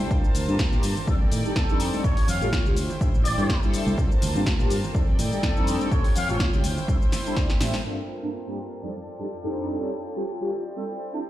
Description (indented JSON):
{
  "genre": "filtered disco house",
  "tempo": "124 BPM",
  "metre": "4/4",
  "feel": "swing 54% on 16ths",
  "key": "G dorian",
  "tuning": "A4 = 445 Hz",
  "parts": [
    { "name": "mellow synth brass", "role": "accompaniment", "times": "0.0-11.2 s", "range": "F2 to D5", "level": "-30 LUFS", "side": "equal", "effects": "chorus, phaser, sidechain pumping, low-pass filter" },
    { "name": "warm studio string section", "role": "sustained chords", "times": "0.0-11.3 s", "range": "Eb3 to A5", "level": "-34 LUFS", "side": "equal", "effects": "sidechain pumping, low-pass filter" },
    { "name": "punchy analog drum machine", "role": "drums", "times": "0.0-7.8 s", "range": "hi-hat, shaker, snare drum", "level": "-32 LUFS", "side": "left 1 dB", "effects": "sidechain pumping on hats, sidechain pumping on perc" },
    { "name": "congas and egg shaker", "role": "percussion", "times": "0.0-7.8 s", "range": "none", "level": "-36 LUFS", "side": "right 2 dB", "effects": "none" },
    { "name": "fingered electric bass", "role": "bass", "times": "0.1-7.7 s", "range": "A1 to Bb2", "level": "-28 LUFS", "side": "equal", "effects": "sidechain pumping, low-pass filter" },
    { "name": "electronic kick drum", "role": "drums", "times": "0.1-7.5 s", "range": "none", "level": "-24 LUFS", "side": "equal", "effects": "none" },
    { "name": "muted trumpet section", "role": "melody", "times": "1.6-6.5 s", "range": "A4 to E#5", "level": "-32 LUFS", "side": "equal", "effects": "sidechain pumping, low-pass filter, digital delay" }
  ],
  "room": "light reverb, small room ambience",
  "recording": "played on a big sound system in a bare room, stone room reverb",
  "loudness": "-22 LUFS",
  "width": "side -14 dB against mid",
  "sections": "0.0-7.8 A section; 7.8-11.3 B section",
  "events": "drum fill 7.1-7.8; filter sweep 7.8-11.3",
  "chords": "0.1 Gm11; 1.1 F13; 2.0 A7alt; 2.8 D9sus4; 4.0 Gm11; 4.9 F13; 5.9 A7alt; 6.6 D9sus4; 7.8 Gm11; 8.8 F13; 9.8 A7alt; 10.5 D9sus4",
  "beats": "| 0.11 0.59 1.08 1.56 | 2.04 2.53 3.01 3.50 | 3.98 4.46 4.95 5.43 | 5.91 6.40 6.88 7.37 | 7.85 8.33 8.82 9.30 | 9.79 10.27 10.75 11.24"
}